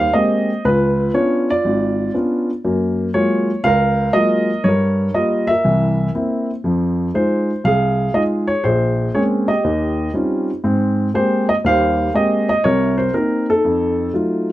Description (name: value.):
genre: solo jazz.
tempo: 120 BPM.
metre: 4/4.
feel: swing 68% on 8ths.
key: Ab major.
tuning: A4 = 439 Hz.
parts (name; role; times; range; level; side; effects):
dark baby grand piano; solo; 0.0-14.5 s; Ab1 to F5; -15 LUFS; equal; none.
room: light reverb.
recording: close, detailed microphones.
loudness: -15 LUFS.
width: side -15 dB against mid.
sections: 0.0-14.5 A section.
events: none.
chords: 0.0 Abmaj9; 0.6 Db7b9; 2.6 Gbmaj9; 4.6 Gm7b5; 5.6 C7; 6.6 Fm7; 8.6 Bbm9; 9.6 Eb13; 10.6 Abmaj9; 12.6 Cm7; 13.6 F7b9.